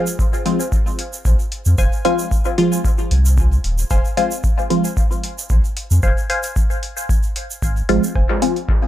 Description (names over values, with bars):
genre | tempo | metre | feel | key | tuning
dub techno | 113 BPM | 4/4 | swing 54% on 16ths | F minor | A4 = 440 Hz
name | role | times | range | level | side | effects
filtered dub chord stab | stabs | 0.0-8.6 s | F3 to F4 | -19 LUFS | equal | phaser, cassette tape, sidechain pumping, dub echo
tube shaker | percussion | 0.1-8.1 s | none | -30 LUFS | right 4 dB | none
electronic kick drum | drums | 0.2-8.8 s | none | -18 LUFS | equal | overdrive
electronic hi-hat | drums | 0.5-8.7 s | none | -28 LUFS | equal | overdrive
pure sine sub bass | bass | 1.3-8.3 s | Eb1 to F2 | -16 LUFS | equal | sidechain pumping
filtered dub chord stab | riff | 1.8-8.5 s | C5 to Ab5 | -27 LUFS | equal | phaser, sidechain pumping, dub echo
room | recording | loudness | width
little or no reverb | echo-heavy mix | -15 LUFS | side -13 dB against mid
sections
0.0-8.2 A section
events
none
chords
0.0 Fm